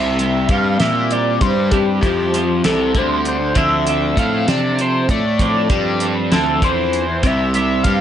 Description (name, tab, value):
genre	indie rock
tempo	65 BPM (dotted quarters)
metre	6/8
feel	straight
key	C major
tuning	A4 = 440 Hz
part	overdriven synth lead	melody	0.0-8.0 s	G4 to F5	-20 LUFS	equal	distortion, chorus, phaser, slapback echo
part	overdriven electric guitar	riff	0.0-8.0 s	C3 to C4	-21 LUFS	left 6 dB	phaser
part	twelve-string electric guitar	riff	0.0-8.0 s	F3 to A4	-22 LUFS	right 6 dB	analog chorus, slapback echo
part	fuzz picked electric bass	bass	0.0-8.0 s	C2 to C3	-21 LUFS	right 1 dB	overdrive
part	cloth-damped thuddy drum kit	drums	0.2-8.0 s	hi-hat, kick drum, snare drum	-20 LUFS	equal	none
room	light reverb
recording	nothing above 10.7 kHz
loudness	-14 LUFS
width	side -10 dB against mid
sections	0.0-8.0 A section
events	none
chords	0.0 C; 3.6 Dm7; 7.3 C